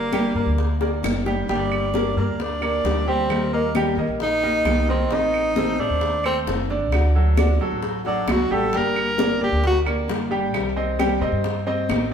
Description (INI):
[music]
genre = latin, Cuban son and guajira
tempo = 132 BPM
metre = 4/4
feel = straight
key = G harmonic minor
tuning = A4 = 440 Hz
[part]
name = clear tenor saxophone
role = melody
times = 0.0-9.8 s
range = Bb3 to Bb4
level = -24 LUFS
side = right 1 dB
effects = none
[part]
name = nylon-string guitar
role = accompaniment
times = 0.0-12.1 s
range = C3 to G4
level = -28 LUFS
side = left 4 dB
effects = none
[part]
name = clear baby grand piano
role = arpeggios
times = 0.0-12.0 s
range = D3 to G5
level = -25 LUFS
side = right 2 dB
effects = none
[part]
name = upright bass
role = bass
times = 0.0-12.1 s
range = F#1 to Eb3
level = -25 LUFS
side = equal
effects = none
[part]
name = bongos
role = percussion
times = 0.1-12.1 s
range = none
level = -30 LUFS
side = left 3 dB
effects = none
[part]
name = claves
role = percussion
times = 0.1-12.1 s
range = none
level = -34 LUFS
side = right 6 dB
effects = none
[part]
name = congas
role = percussion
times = 0.1-12.1 s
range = none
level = -30 LUFS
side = equal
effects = none
[sound]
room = moderate stone room reverb, RT60 1.2 s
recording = band playing live in one room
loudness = -19 LUFS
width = side -7 dB against mid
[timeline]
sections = 0.0-1.5 A section; 1.5-12.1 B section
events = drum fill 0.8-1.5; tenor saxophone solo 1.5-12.1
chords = 0.0 Gm; 3.3 Eb; 5.1 Adim; 6.9 D; 8.7 Gm; 10.5 Cm